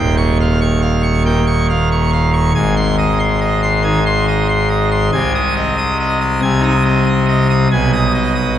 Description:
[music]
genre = classical, organ toccata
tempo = 93 BPM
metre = 4/4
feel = straight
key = Ab major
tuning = A4 = 440 Hz
[part]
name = pipe organ, full organ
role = solo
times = 0.0-8.6 s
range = Eb1 to Eb6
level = -12 LUFS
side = equal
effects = none
[sound]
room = wet cathedral reverb, RT60 4.5 s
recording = none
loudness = -12 LUFS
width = side -10 dB against mid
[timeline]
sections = 0.0-8.6 A section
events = none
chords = 0.0 Eb9; 2.5 Ab; 5.1 Ab/C; 7.7 G#m/B

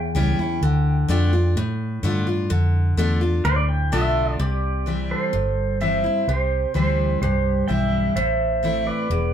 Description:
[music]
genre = honky-tonk and classic country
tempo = 127 BPM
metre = 4/4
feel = straight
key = unclear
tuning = A4 = 444 Hz
[part]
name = pedal steel guitar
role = melody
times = 0.0-9.3 s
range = G4 to A5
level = -24 LUFS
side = right 2 dB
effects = none
[part]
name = picked steel-string acoustic guitar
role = accompaniment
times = 0.0-9.3 s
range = E2 to F4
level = -24 LUFS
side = left 2 dB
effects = none
[part]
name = vintage muted fingered electric bass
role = bass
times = 0.1-9.3 s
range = E1 to A2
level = -22 LUFS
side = equal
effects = none
[sound]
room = moderate studio reverb, RT60 0.6 s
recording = heard from further back in the room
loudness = -19 LUFS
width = side -9 dB against mid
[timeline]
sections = 0.0-4.4 A section; 4.4-9.3 B section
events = pedal steel guitar solo 0.0-4.4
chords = 0.0 A7 (rootless); 0.6 Dm; 4.4 C; 8.2 Am

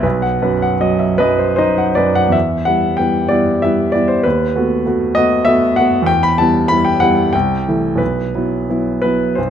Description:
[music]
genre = classical, romantic character piece for solo piano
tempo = 76-100 BPM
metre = 3/4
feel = rubato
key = E minor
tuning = A4 = 441 Hz
[part]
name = warm baby grand piano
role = solo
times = 0.0-9.5 s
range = B1 to B5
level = -13 LUFS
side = equal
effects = none
[sound]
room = light reverb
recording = close, detailed microphones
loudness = -13 LUFS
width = side -9 dB against mid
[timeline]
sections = 0.0-2.3 A section; 2.3-9.5 B section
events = none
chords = 0.0 B; 2.3 Em; 4.2 B7/D#; 6.1 Em; 7.3 C6; 8.0 Bsus4

